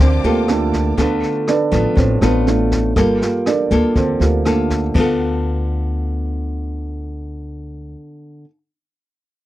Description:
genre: bossa nova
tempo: 121 BPM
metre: 4/4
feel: straight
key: D minor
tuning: A4 = 444 Hz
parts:
  - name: dark baby grand piano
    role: accompaniment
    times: 0.0-5.0 s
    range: F3 to D5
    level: -19 LUFS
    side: right 4 dB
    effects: none
  - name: nylon-string guitar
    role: accompaniment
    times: 0.0-8.5 s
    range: A2 to A4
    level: -20 LUFS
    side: left 1 dB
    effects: none
  - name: warm symphonic string section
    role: sustained chords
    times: 0.0-1.0 s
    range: F5 to D6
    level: -31 LUFS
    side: left 5 dB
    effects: none
  - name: upright bass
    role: bass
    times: 0.0-7.9 s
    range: G1 to D2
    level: -20 LUFS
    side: left 1 dB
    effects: none
  - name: jazz brush drum kit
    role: drums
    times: 0.2-5.1 s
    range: crash cymbal, kick drum, rim click, snare drum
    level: -22 LUFS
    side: left 1 dB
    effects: none
room: little or no reverb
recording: dry, close 1970s-style studio recording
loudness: -15 LUFS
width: side -15 dB against mid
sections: 0.0-4.9 A section; 4.9-8.9 B section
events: grand piano solo 0.0-4.9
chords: 0.0 Gm9; 1.0 Dm6; 3.0 Gm9; 4.9 Dm6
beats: 0.48 | 0.98 1.48 1.97 2.47 | 2.96 3.46 3.96 4.45 | 4.95 5.44 5.94 6.44 | 6.93 7.43 7.92 8.42

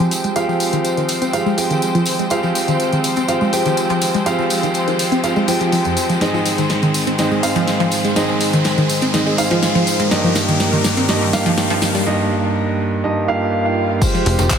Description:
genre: progressive house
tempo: 123 BPM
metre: 4/4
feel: straight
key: F minor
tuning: A4 = 436 Hz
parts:
  - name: clear studio string section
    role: sustained chords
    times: 0.0-14.6 s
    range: G2 to G5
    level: -23 LUFS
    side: left 2 dB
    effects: sidechain pumping, low-pass filter
  - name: wide unison pluck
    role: arpeggios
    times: 0.0-14.4 s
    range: F2 to C4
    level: -20 LUFS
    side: equal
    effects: sidechain pumping, tape echo
  - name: dark baby grand piano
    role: stabs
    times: 0.0-14.6 s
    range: G2 to G5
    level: -19 LUFS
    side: right 2 dB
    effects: sidechain pumping, low-pass filter, tape echo
  - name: deep house drum kit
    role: drums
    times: 0.0-14.6 s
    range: crash cymbal, handclaps, hi-hat, snare drum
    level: -23 LUFS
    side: left 1 dB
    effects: none
  - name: tambourine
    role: percussion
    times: 0.0-14.6 s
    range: none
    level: -28 LUFS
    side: right 1 dB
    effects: none
  - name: riser and swell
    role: sound effects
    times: 2.5-14.0 s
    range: none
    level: -27 LUFS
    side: left 1 dB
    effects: none
  - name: electronic kick drum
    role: drums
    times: 14.0-14.6 s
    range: none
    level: -18 LUFS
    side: left 1 dB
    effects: none
  - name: plucky analog bass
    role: bass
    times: 14.3-14.5 s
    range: F1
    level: -16 LUFS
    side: left 1 dB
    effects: sidechain pumping
room: moderate huge ambient reverb, RT60 4.4 s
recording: none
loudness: -15 LUFS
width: side -7 dB against mid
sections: 0.0-14.0 A section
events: build-up 0.0-14.0; filter sweep on synth pluck 0.0-14.0; riser 2.5-12.1; drum fill 6.2-12.1; break 12.1-14.0; swell 13.2-14.0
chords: 0.0 Fmadd9; 6.2 Ab; 10.1 Eb/G; 14.0 Fmadd9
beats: | 0.36 0.85 1.33 1.82 | 2.31 2.80 3.29 3.77 | 4.26 4.75 5.24 5.72 | 6.21 6.70 7.19 7.67 | 8.16 8.65 9.14 9.63 | 10.11 10.60 11.09 11.58 | 12.06 12.55 13.04 13.53 | 14.02 14.50

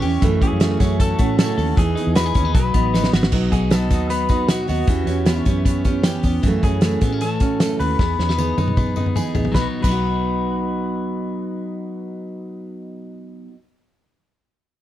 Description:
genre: jangly indie pop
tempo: 154 BPM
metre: 4/4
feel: straight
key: B mixolydian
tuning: A4 = 442 Hz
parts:
  - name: picked steel-string acoustic guitar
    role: accompaniment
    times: 0.0-13.6 s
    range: F#2 to G#4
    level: -25 LUFS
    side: right 7 dB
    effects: none
  - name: hollow soft pad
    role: sustained chords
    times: 0.0-6.4 s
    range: A3 to D#6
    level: -34 LUFS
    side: right 4 dB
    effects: chorus
  - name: clean electric guitar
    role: arpeggios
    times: 0.0-13.6 s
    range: E3 to A4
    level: -25 LUFS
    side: left 5 dB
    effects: slapback echo
  - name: vintage muted fingered electric bass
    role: bass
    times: 0.0-13.5 s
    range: G#1 to A2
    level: -23 LUFS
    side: equal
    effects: none
  - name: loose indie drum kit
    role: drums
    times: 0.0-9.9 s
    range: crash cymbal, hi-hat, kick drum, snare drum, toms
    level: -19 LUFS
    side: equal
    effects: none
  - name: tambourine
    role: percussion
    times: 0.0-9.9 s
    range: none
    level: -40 LUFS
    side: right 11 dB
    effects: none
  - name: electric guitar through a small old amp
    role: melody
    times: 0.4-13.5 s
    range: F#4 to B4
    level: -26 LUFS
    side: left 2 dB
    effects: slapback echo
room: studio reverb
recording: dry, close 1970s-style studio recording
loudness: -17 LUFS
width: side -13 dB against mid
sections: 0.0-3.3 A section; 3.3-9.5 B section; 9.5-12.7 C section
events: drum fill 2.9-3.3, 8.0-9.5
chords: 0.2 F#m7; 1.8 Emaj7; 2.6 B; 4.9 Em6; 6.4 F#m7; 8.0 Emaj7; 9.5 B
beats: | 0.23 0.61 1.00 1.39 | 1.78 2.16 2.55 2.94 | 3.33 3.72 4.10 4.49 | 4.88 5.27 5.66 6.05 | 6.43 6.82 7.21 7.60 | 7.99 8.38 8.77 9.16 | 9.54 9.93 10.32 10.71 | 11.10 11.49 11.88 12.27

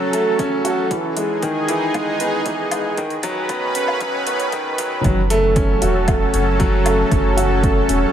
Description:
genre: piano and strings electronica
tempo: 116 BPM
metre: 4/4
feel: straight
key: F# dorian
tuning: A4 = 440 Hz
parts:
  - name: lush unison pad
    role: sustained chords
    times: 0.0-8.1 s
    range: D#3 to B4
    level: -22 LUFS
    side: right 1 dB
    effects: chorus, sidechain pumping
  - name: warm grand piano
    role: riff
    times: 0.0-8.1 s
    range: D#3 to F#4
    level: -20 LUFS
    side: equal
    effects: digital delay
  - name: electronic hi-hat and woodblock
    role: drums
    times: 0.1-8.0 s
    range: none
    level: -27 LUFS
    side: left 1 dB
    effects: overdrive, studio reverb
  - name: electronic kick drum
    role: drums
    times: 0.4-7.7 s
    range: none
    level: -21 LUFS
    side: equal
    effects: overdrive, studio reverb
  - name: round analog bass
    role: bass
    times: 5.0-8.1 s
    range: E1 to F#1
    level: -20 LUFS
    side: equal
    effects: sidechain pumping
room: light reverb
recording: high-pass filter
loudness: -16 LUFS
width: side -10 dB against mid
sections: 0.0-5.0 A section; 5.0-8.1 B section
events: build-up 0.0-5.0; filter sweep 0.0-5.0; drop 5.0-8.1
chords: 0.0 F#m; 0.9 Emaj7; 3.0 Badd9; 5.0 F#m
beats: 0.39 | 0.91 1.43 1.95 2.46 | 2.98 3.50 4.01 4.53 | 5.05 5.57 6.08 6.60 | 7.12 7.63

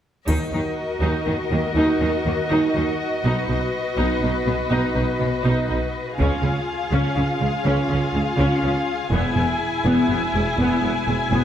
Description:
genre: cinematic, epic orchestral film score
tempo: 82 BPM (dotted quarters)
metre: 12/8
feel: straight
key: Eb minor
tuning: A4 = 444 Hz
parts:
  - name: warm symphonic violin section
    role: second line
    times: 0.3-11.4 s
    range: Ab4 to G#5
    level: -26 LUFS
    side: left 3 dB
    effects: none
  - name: rich symphonic viola section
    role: accompaniment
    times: 0.3-11.4 s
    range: Ab3 to Gb4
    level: -23 LUFS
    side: equal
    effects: none
  - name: clear symphonic cello section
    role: bass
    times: 0.3-11.4 s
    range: E2 to Eb3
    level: -26 LUFS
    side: right 1 dB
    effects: none
  - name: clear symphonic double bass section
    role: bass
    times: 0.3-11.4 s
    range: E1 to Eb2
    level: -25 LUFS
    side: right 1 dB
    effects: none
  - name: taiko ensemble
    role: drums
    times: 0.3-1.2, 6.2-7.1 s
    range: none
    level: -26 LUFS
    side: left 1 dB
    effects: none
  - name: triangle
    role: percussion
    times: 0.3-1.2 s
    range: none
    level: -39 LUFS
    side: left 4 dB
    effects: none
room: wet scoring stage reverb, RT60 1.8 s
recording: none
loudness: -19 LUFS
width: side -10 dB against mid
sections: 0.3-11.4 A section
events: build-up 0.3-11.4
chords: 0.3 Ebm; 3.2 B; 6.2 Db; 9.1 E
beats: | 0.28 1.02 1.76 2.50 | 3.24 3.98 4.71 5.45 | 6.18 6.92 7.66 8.39 | 9.12 9.86 10.59 11.32

